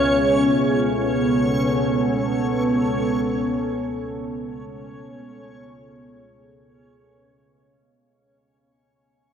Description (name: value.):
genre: dark ambient drone.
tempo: free time.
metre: none.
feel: none.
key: unclear.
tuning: A4 = 440 Hz.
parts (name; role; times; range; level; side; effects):
deep dark ambient pad; sustained chords; 0.0-8.1 s; B3 to E5; -23 LUFS; equal; chorus, built-in reverb.
overtone-sweeping drone; drone; 0.0-8.2 s; C#2 to C#3; -25 LUFS; right 1 dB; chorus, built-in reverb.
backwards swelling texture; texture; 0.0-8.1 s; C#4 to C#5; -24 LUFS; left 1 dB; built-in reverb.
room: wet cathedral reverb, RT60 6.5 s.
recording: dark, warm production.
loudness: -19 LUFS.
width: side -8 dB against mid.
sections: 0.0-8.1 A section.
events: fade-out 0.0-8.1.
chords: 0.0 Aadd9.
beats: free time.